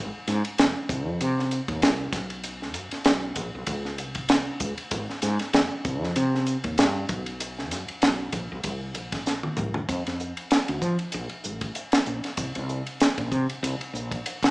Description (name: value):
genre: electric jazz fusion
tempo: 97 BPM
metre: 4/4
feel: swing 56% on 16ths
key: unclear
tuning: A4 = 441 Hz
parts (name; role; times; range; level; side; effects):
- woody fretless electric bass; bass; 0.0-14.2 s; F1 to F3; -29 LUFS; equal; none
- tight funk drum kit; drums; 0.3-14.5 s; hi-hat, kick drum, ride cymbal, snare drum, toms; -25 LUFS; equal; none
room: moderate large studio reverb, RT60 1.2 s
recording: band playing live in one room, small speaker sound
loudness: -24 LUFS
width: side -24 dB against mid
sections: 0.0-9.9 A section; 9.9-14.5 B section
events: drum fill 9.3-9.9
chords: none